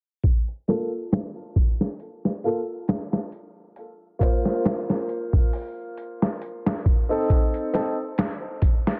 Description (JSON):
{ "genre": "trip hop", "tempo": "68 BPM", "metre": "4/4", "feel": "swing 55% on 16ths", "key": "unclear", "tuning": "A4 = 440 Hz", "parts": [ { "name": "boom bap sampler-style drum kit", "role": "drums", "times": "0.2-9.0 s", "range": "hi-hat, kick drum, snare drum", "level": "-24 LUFS", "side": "equal", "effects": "soft clipping on snare" }, { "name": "bright upright piano", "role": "accompaniment", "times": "0.7-8.0 s", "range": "Bb3 to C5", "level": "-30 LUFS", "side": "equal", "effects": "tremolo, low-pass filter, tape echo" } ], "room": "light reverb", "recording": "dense, heavily limited modern master, low-pass filter", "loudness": "-25 LUFS", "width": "mono", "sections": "0.2-9.0 A section", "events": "filter sweep on upright piano 0.2-9.0; filter sweep 0.2-9.0", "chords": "0.2 Bbsus2; 7.3 Adim", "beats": "| 0.24 1.12 2.01 2.89 | 3.77 4.65 5.54 6.42 | 7.30 8.18" }